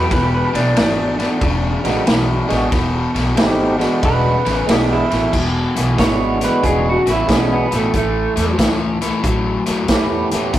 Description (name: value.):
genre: electric blues shuffle.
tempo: 92 BPM.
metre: 4/4.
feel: swing 66% on 8ths.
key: E mixolydian.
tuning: A4 = 440 Hz.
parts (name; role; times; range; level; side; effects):
electric guitar through a small old amp; melody; 0.0-8.6 s; A3 to C#5; -20 LUFS; right 1 dB; slapback echo.
overdriven electric guitar; riff; 0.0-10.6 s; E2 to F#3; -20 LUFS; left 2 dB; none.
upright bass; bass; 0.0-10.6 s; E1 to E2; -22 LUFS; equal; none.
vintage drum kit; drums; 0.1-10.6 s; crash cymbal, hi-hat, kick drum, ride cymbal, snare drum; -19 LUFS; equal; none.
tonewheel organ; accompaniment; 1.8-10.5 s; G#3 to G#4; -20 LUFS; right 2 dB; slow rotary speaker.
room: moderate studio ambience, RT60 0.5 s.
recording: rough rehearsal-room recording, warm saturation.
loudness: -14 LUFS.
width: side -12 dB against mid.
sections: 0.0-5.3 A section; 5.3-10.6 B section.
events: clean electric guitar solo 5.3-10.6.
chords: 0.1 E9; 7.9 A9.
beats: | 0.11 0.76 1.42 2.07 | 2.72 3.38 4.03 4.68 | 5.33 5.99 6.64 7.29 | 7.94 8.59 9.24 9.89 | 10.54.